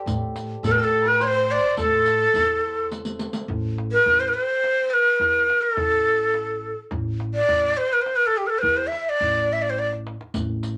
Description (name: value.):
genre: Persian modal ensemble.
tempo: 105 BPM.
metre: 3/4.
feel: straight.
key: A dastgah shur.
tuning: A4 = 440 Hz.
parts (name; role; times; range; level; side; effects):
santur; second line; 0.0-4.7 s; G4 to D5; -37 LUFS; equal; none.
upright bass; bass; 0.1-10.8 s; A1 to A2; -32 LUFS; equal; none.
riq; percussion; 0.1-3.5, 10.3-10.8 s; none; -35 LUFS; equal; none.
tombak; percussion; 0.1-10.8 s; none; -37 LUFS; equal; none.
warm studio violin section; second line; 0.6-2.9 s; A4 to C5; -33 LUFS; equal; none.
breathy bright ney; melody; 0.7-9.9 s; G4 to E5; -21 LUFS; equal; none.
room: wet club reverb, RT60 0.5 s.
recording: none.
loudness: -22 LUFS.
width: mono.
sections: 0.0-3.5 A section; 3.5-10.8 B section.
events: drum fill 2.9-3.5, 9.8-10.3.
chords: none.